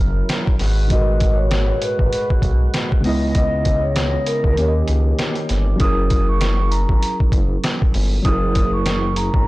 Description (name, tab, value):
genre	hip hop, boom-bap hip-hop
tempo	98 BPM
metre	4/4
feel	swing 56% on 16ths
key	unclear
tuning	A4 = 441 Hz
part	tine electric piano	accompaniment	0.0-9.5 s	G#2 to D#5	-24 LUFS	right 1 dB	overdrive, fast stereo tremolo, cassette tape, high-pass filter, low-pass filter
part	tonewheel organ	sustained chords	0.0-5.8 s	C#3 to D#5	-30 LUFS	equal	slow rotary speaker, high-pass filter, low-pass filter
part	smooth synth bass	bass	0.0-9.4 s	F#1 to D#2	-19 LUFS	equal	tube saturation
part	trip hop sampler-style drum kit	drums	0.3-9.5 s	hi-hat, kick drum, snare drum	-19 LUFS	equal	none
part	vibraphone with soft mallets	melody	0.9-9.5 s	A#4 to D#6	-24 LUFS	equal	high-pass filter, low-pass filter, analog delay
room	little or no reverb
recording	blown-out, overdriven recording, overdrive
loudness	-16 LUFS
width	side -19 dB against mid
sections	0.0-5.8 A section; 5.8-9.5 B section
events	kick muted 4.6-5.8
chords	0.0 F#7; 0.6 G#m7; 3.0 C#m9; 4.6 D#7; 5.8 F#7